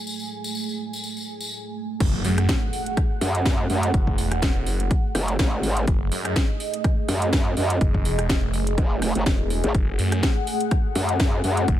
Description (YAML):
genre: bass house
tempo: 124 BPM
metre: 4/4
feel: swing 55% on 16ths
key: F# dorian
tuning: A4 = 440 Hz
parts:
  - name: dark analog pad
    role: sustained chords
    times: 0.0-11.8 s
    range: A3 to G#5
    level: -29 LUFS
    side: right 2 dB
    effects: chorus, sidechain pumping
  - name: warbly tape-like pad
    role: texture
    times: 0.0-1.5 s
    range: F#3 to C#5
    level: -50 LUFS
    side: left 2 dB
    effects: none
  - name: tambourine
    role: percussion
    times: 0.1-1.5 s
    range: none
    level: -32 LUFS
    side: left 2 dB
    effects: none
  - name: phased detuned saw bass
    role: bass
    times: 2.0-11.8 s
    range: E1 to F#2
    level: -24 LUFS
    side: equal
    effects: phaser, overdrive, sidechain pumping
  - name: electronic kick drum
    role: drums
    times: 2.0-11.8 s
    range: none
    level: -22 LUFS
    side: equal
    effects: none
  - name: house drum kit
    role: drums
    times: 2.0-11.8 s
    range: crash cymbal, hi-hat, rim click, snare drum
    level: -29 LUFS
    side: equal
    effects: low-pass filter on hats, low-pass filter on cymbals, low-pass filter on snare
  - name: impact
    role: sound effects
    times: 2.0-3.9 s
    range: none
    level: -33 LUFS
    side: left 1 dB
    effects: none
  - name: growl bass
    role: bass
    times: 3.2-11.7 s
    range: E1 to F#2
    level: -22 LUFS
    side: equal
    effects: chorus, overdrive, sidechain pumping
room: digital ambience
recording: none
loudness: -20 LUFS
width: side -12 dB against mid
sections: 0.0-2.0 A section; 2.0-11.8 B section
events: filter sweep on analog synth pad 0.0-2.0; drop 2.0-11.8; impact 2.0-3.9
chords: 0.0 F#madd9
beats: | 0.07 0.55 1.04 1.52 | 2.00 2.49 2.97 3.46 | 3.94 4.42 4.91 5.39 | 5.88 6.36 6.84 7.33 | 7.81 8.29 8.78 9.26 | 9.75 10.23 10.71 11.20 | 11.68